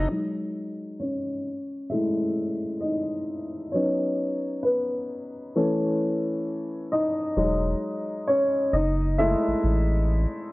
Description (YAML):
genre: hip hop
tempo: 66 BPM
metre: 4/4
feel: swing 64% on 16ths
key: unclear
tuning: A4 = 440 Hz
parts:
  - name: bright upright piano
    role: accompaniment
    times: 0.0-10.5 s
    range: E3 to E5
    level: -24 LUFS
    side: left 1 dB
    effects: cassette tape, low-pass filter
  - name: round analog bass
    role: bass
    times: 0.0-0.1, 7.4-10.3 s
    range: E1 to A1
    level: -24 LUFS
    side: equal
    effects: none
room: moderate spring reverb, RT60 1.6 s, studio reverb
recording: worn, warbling old tape, cassette tape, warbly pitch drift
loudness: -24 LUFS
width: side -20 dB against mid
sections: 0.1-10.5 A section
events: upright piano solo 0.1-10.5; filter sweep on upright piano 0.1-10.5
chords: 0.1 G#7sus4/F#; 1.5 Amaj7#11/G#; 3.7 Badd9/F#; 5.5 B7sus4; 7.4 Emaj7; 8.7 F#m7